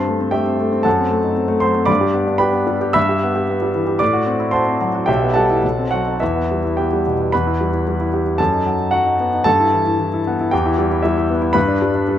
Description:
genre	classical, virtuoso piano study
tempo	113 BPM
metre	2/4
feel	rubato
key	E minor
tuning	A4 = 439 Hz
part	warm concert grand piano	solo	0.0-12.2 s	B1 to E6	-15 LUFS	equal	none
room	moderate concert hall reverb, RT60 1.8 s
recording	close, detailed microphones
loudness	-15 LUFS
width	side -10 dB against mid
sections	0.0-7.3 A section; 7.3-12.2 B section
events	none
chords	0.0 Am7/G; 0.9 F#dim7; 1.9 G; 3.0 Em/G; 4.0 F#m7b5/A; 5.1 Em/B; 5.6 B7b9; 6.2 Em; 8.4 B7/F#; 9.5 Em/G; 10.5 Em; 11.6 G

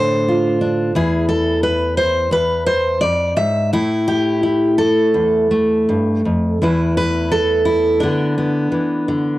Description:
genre	folk, solo fingerstyle acoustic guitar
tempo	86 BPM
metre	4/4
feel	rubato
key	unclear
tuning	A4 = 440 Hz
part	fingerpicked steel-string acoustic guitar	solo	0.0-9.4 s	E2 to E5	-14 LUFS	equal	none
room	moderate studio reverb, RT60 0.6 s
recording	home recording on cassette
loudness	-14 LUFS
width	side -16 dB against mid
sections	0.0-6.6 A section; 6.6-9.4 B section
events	none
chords	0.0 Dm; 1.0 E; 3.7 A5; 6.6 Esus4; 8.0 Bmadd11/D

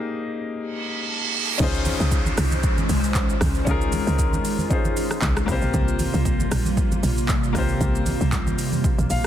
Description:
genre	amapiano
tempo	116 BPM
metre	4/4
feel	swing 55% on 16ths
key	unclear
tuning	A4 = 440 Hz
part	clear baby grand piano	accompaniment	0.0-9.3 s	Bb3 to F5	-28 LUFS	left 5 dB	none
part	reverse cymbal and downlifter	sound effects	0.7-5.7 s	none	-28 LUFS	right 4 dB	none
part	hollow soft pad	sustained chords	1.6-9.3 s	C3 to C5	-27 LUFS	right 1 dB	ensemble chorus, sidechain pumping
part	woody log drum bass	bass	1.6-9.2 s	Bb1 to Db2	-24 LUFS	equal	none
part	deep house drum kit	drums	1.6-9.3 s	crash cymbal, handclaps, hi-hat, kick drum, rim click, shaker	-24 LUFS	equal	overdrive
part	congas	percussion	1.6-9.1 s	none	-31 LUFS	right 2 dB	none
room	little or no reverb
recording	dense, heavily limited modern master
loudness	-20 LUFS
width	side -11 dB against mid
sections	0.0-1.6 A section; 1.6-9.3 B section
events	break 0.0-1.6; reverse cymbal 0.7-1.6; drop 1.6-9.3; grand piano fill 8.8-9.3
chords	0.0 Abmaj7; 1.6 Dbmaj7; 5.5 C7sus4

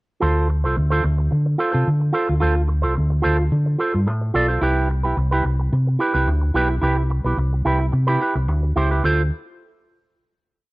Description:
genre	disco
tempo	109 BPM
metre	4/4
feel	straight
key	D dorian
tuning	A4 = 440 Hz
part	electric guitar with an envelope filter	accompaniment	0.2-9.2 s	E4 to D5	-22 LUFS	right 2 dB	none
part	hollow-body short-scale fingered electric bass	bass	0.2-9.3 s	B1 to D3	-19 LUFS	equal	none
room	digital ambience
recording	none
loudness	-17 LUFS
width	side -21 dB against mid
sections	0.2-9.0 verse; 9.0-10.7 final chord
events	none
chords	0.2 Dm7; 4.6 Cmaj7; 9.0 Dm7

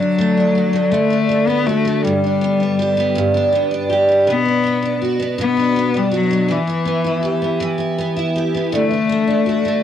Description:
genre	pop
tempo	54 BPM (dotted quarters)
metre	6/8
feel	straight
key	D major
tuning	A4 = 440 Hz
part	rich cello	melody	0.0-9.8 s	E3 to B3	-18 LUFS	left 5 dB	cassette tape
part	picked steel-string acoustic guitar	accompaniment	0.0-9.8 s	G2 to G4	-17 LUFS	right 2 dB	double-tracked left and right, cassette tape
room	moderate studio reverb, RT60 0.5 s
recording	home recording on cassette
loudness	-15 LUFS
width	side -10 dB against mid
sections	0.0-9.8 A section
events	none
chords	0.0 D; 2.0 G; 4.3 Bm; 6.5 Em; 8.7 D

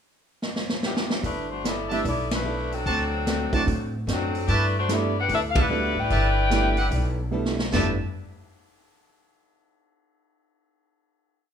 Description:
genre	jazz, big band swing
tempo	148 BPM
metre	4/4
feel	swing 64% on 8ths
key	G major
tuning	A4 = 439 Hz
part	swinging big-band drum kit	drums	0.4-7.8 s	hi-hat, kick drum, ride cymbal, snare drum, splash cymbal, toms	-28 LUFS	equal	none
part	mellow saxophone section	melody	0.9-7.2 s	E3 to G5	-26 LUFS	left 3 dB	none
part	archtop guitar, miked and amplified	accompaniment	1.2-7.9 s	D3 to A4	-34 LUFS	left 2 dB	none
part	upright bass	bass	1.2-8.0 s	G1 to A2	-27 LUFS	equal	none
part	dark concert grand piano	accompaniment	1.9-8.0 s	F#3 to F#4	-29 LUFS	right 6 dB	none
part	brilliant trumpet section	stabs	1.9-7.9 s	F#4 to A5	-29 LUFS	right 1 dB	none
room	moderate large studio reverb, RT60 1.1 s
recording	minimal, uncompressed stereo recording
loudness	-22 LUFS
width	side -8 dB against mid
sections	0.0-1.2 pickup bar; 1.2-7.7 A section; 7.7-9.4 final chord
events	drum fill 0.4-1.2, 7.3-7.7; band accent 2.3, 5.5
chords	0.0 G6; 1.2 G69; 2.9 D7; 4.5 G69

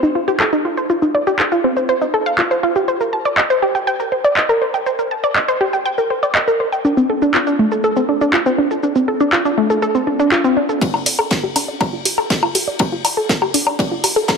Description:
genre	melodic techno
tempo	121 BPM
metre	4/4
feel	straight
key	G minor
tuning	A4 = 436 Hz
part	wide unison pluck	arpeggios	0.0-14.4 s	A3 to A5	-16 LUFS	equal	sidechain pumping, tape echo
part	punchy analog drum machine	drums	0.0-14.4 s	handclaps, hi-hat, shaker, woodblock	-19 LUFS	left 1 dB	low-pass filter on perc, low-pass filter on snare, low-pass filter on hats
part	damped 70s drum kit	drums	10.8-14.4 s	ride cymbal, snare drum	-24 LUFS	left 2 dB	high-pass filter on cymbals, high-pass filter on snare, high-pass filter on room
part	electronic kick drum	drums	10.8-14.4 s	none	-20 LUFS	equal	high-pass filter on kick, high-pass filter on room
room	wet lush hall reverb, RT60 1.7 s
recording	none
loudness	-14 LUFS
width	side -5 dB against mid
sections	0.0-10.8 A section; 10.8-14.4 B section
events	filter sweep on synth arpeggio sound 0.0-10.8; build-up 10.8-14.4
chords	none

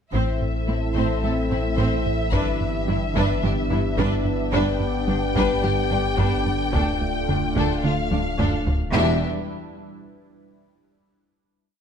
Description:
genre	cinematic, hybrid orchestral and electronic film score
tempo	109 BPM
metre	4/4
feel	straight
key	E phrygian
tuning	A4 = 440 Hz
part	warm symphonic violin section	melody	0.1-9.2 s	E5 to G5	-29 LUFS	left 5 dB	none
part	warm symphonic violin section	second line	0.1-9.3 s	D4 to C5	-31 LUFS	left 4 dB	none
part	rich symphonic viola section	accompaniment	0.1-9.2 s	C4 to D4	-30 LUFS	equal	none
part	mellow trombone section	sustained chords	0.1-9.2 s	B2 to B3	-32 LUFS	right 4 dB	none
part	phased analog pad	sustained chords	0.1-9.3 s	G3 to E5	-31 LUFS	right 1 dB	phaser, chorus
part	warm French horn section	sustained chords	0.1-9.2 s	C4 to G4	-32 LUFS	left 7 dB	none
part	tight sequencer bass	riff	0.1-8.8 s	D2 to A3	-28 LUFS	right 3 dB	none
part	rich symphonic cello section	bass	0.1-9.2 s	D2 to A2	-30 LUFS	right 3 dB	none
part	rich symphonic double bass section	bass	0.1-9.2 s	E1 to D2	-30 LUFS	right 3 dB	none
part	sub bass with octave	bass	0.1-9.2 s	D1 to A1	-29 LUFS	left 1 dB	none
part	taiko ensemble	drums	0.1-8.9 s	none	-29 LUFS	equal	none
room	light reverb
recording	close, detailed microphones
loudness	-20 LUFS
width	side -7 dB against mid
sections	0.1-8.9 theme; 8.9-11.1 final chord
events	drum fill 8.1-8.9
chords	0.1 Am; 2.3 Em7/G; 4.5 G; 6.7 Dm; 8.9 Em7

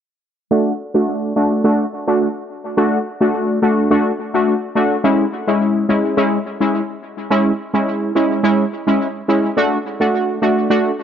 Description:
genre	dancehall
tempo	106 BPM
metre	4/4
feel	straight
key	unclear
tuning	A4 = 436 Hz
part	synth brass stab	solo	0.5-10.9 s	G#3 to F#4	-15 LUFS	equal	chorus, low-pass filter, cassette tape, tape echo
room	moderate spring reverb, RT60 1.7 s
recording	home recording on cassette, nothing above 7.5 kHz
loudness	-15 LUFS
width	side -8 dB against mid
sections	0.5-9.6 A section; 9.6-11.0 B section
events	filter sweep on synth stab 0.5-9.6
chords	0.5 D; 5.0 C#m; 9.6 D

